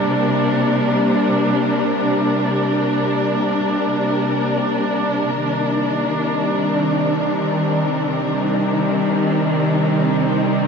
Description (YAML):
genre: ambient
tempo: free time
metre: none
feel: none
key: C minor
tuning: A4 = 441 Hz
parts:
  - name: warm studio string section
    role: sustained chords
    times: 0.0-10.7 s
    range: C3 to Bb4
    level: -17 LUFS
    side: left 1 dB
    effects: none
  - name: bowed-like drone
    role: drone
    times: 0.0-10.7 s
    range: C3 to G3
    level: -22 LUFS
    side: right 2 dB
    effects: built-in reverb
room: wet huge ambient reverb, RT60 7.6 s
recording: none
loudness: -16 LUFS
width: side -6 dB against mid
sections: 0.0-5.3 A section; 5.3-10.7 B section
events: none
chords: 0.0 Gm/C; 5.3 Cm9